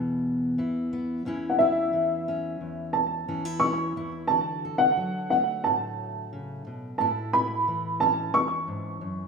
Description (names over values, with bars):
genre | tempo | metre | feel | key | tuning
folk | 89 BPM | 4/4 | straight | A major | A4 = 441 Hz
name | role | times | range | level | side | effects
fingerpicked steel-string acoustic guitar | accompaniment | 0.0-9.3 s | E2 to A4 | -31 LUFS | left 1 dB | none
dark upright piano | melody | 1.5-9.3 s | E5 to C#6 | -24 LUFS | equal | slapback echo
room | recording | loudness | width
light reverb, small room ambience | rough home demo mix, studio reverb | -24 LUFS | side -5 dB against mid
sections
0.0-9.3 A section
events
none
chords
0.0 E; 1.3 A/E; 4.3 D; 7.0 A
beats
0.24 0.92 | 1.59 2.27 2.94 3.62 | 4.29 4.97 5.64 6.32 | 6.99 7.66 8.34 9.01